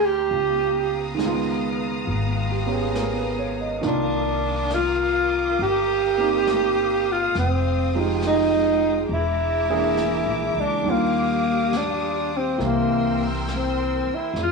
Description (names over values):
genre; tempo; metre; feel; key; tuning
jazz ballad; 68 BPM; 4/4; swing 68% on 8ths; unclear; A4 = 440 Hz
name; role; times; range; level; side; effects
breathy tenor saxophone; melody; 0.0-14.5 s; Bb3 to G4; -21 LUFS; equal; cassette tape
clear concert grand piano; accompaniment; 0.0-14.4 s; Eb3 to Eb5; -27 LUFS; right 8 dB; cassette tape
rich studio string section; sustained chords; 0.0-14.5 s; Ab3 to E6; -31 LUFS; left 3 dB; cassette tape
upright bass; bass; 0.0-14.5 s; E1 to F2; -28 LUFS; left 1 dB; none
jazz brush drum kit; drums; 0.3-14.5 s; brushed snare drum, hi-hat, snare drum; -36 LUFS; left 3 dB; none
room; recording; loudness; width
light reverb; home recording on cassette, studio ambience; -20 LUFS; side -3 dB against mid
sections
0.0-14.5 A section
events
none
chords
0.3 Db13; 3.8 Cm11; 7.3 Fm9; 9.1 E7#11; 10.8 Ebmaj9; 12.6 C7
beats
| 0.31 1.19 2.07 2.94 | 3.82 4.70 5.58 6.46 | 7.33 8.21 9.09 9.96 | 10.84 11.72 12.59 13.47 | 14.35